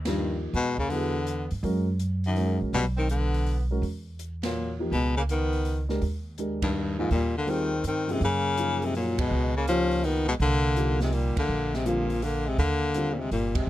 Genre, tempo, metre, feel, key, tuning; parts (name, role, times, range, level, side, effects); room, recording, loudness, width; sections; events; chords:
jazz, small-group swing and bop; 164 BPM; 3/4; swing 66% on 8ths; A4 = 440 Hz
upright bass; bass; 0.0-13.7 s; G1 to G2; -28 LUFS; right 1 dB
breathy baritone saxophone; melody; 0.1-13.7 s; Gb2 to F3; -27 LUFS; left 3 dB
breathy tenor saxophone; second line; 0.1-13.7 s; Eb3 to Db4; -35 LUFS; right 5 dB
dark baby grand piano; accompaniment; 0.1-13.2 s; Gb2 to Bb4; -32 LUFS; equal
open jazz drum kit; drums; 0.1-13.6 s; hi-hat, kick drum, ride cymbal, snare drum; -36 LUFS; right 1 dB
little or no reverb; close, detailed microphones; -24 LUFS; side -14 dB against mid
0.0-8.2 A section; 8.2-13.7 B section
band accent 0.0, 4.4, 6.6, 9.1, 11.3, 13.5
0.0 Ebadd9; 0.5 E9; 1.6 Gb69; 2.7 Bm; 3.8 Esus2; 4.9 Dbsus2; 6.0 Eb69; 8.2 Gbmaj9; 9.3 Db69; 10.4 Cm7; 11.5 Bb; 12.6 Eb69